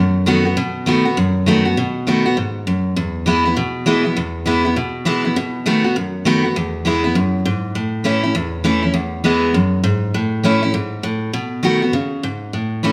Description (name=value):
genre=rock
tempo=201 BPM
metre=4/4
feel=swing 63% on 8ths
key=E major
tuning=A4 = 442 Hz
part: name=picked steel-string acoustic guitar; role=solo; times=0.0-12.9 s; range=E2 to F#4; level=-18 LUFS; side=equal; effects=none
room=wet large studio reverb, RT60 1.3 s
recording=band playing live in one room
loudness=-18 LUFS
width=mono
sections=0.0-7.8 A section; 7.8-12.9 B section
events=none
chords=0.0 B7; 3.0 E; 5.4 B7; 6.6 E; 7.8 A; 8.9 E; 10.1 A; 11.3 B7